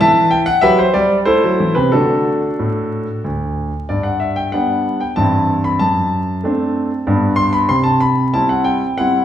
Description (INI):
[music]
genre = classical-period piano sonatina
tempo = 94 BPM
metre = 3/4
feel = straight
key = G major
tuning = A4 = 441 Hz
[part]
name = clear grand piano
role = solo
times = 0.0-9.2 s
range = D2 to C6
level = -13 LUFS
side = equal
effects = none
[sound]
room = wet recital hall reverb, RT60 1.4 s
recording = heard from further back in the room, vinyl crackle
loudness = -14 LUFS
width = side -10 dB against mid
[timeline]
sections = 0.0-3.9 A section; 3.9-9.2 B section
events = none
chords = 0.0 Em; 1.3 Am; 1.9 D; 3.9 G; 5.2 Am7/G; 5.8 D7/F#; 7.1 G; 7.7 C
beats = | 0.01 0.64 1.27 | 1.92 2.59 3.24 | 3.90 4.54 5.18 | 5.82 6.45 7.08 | 7.71 8.34 8.98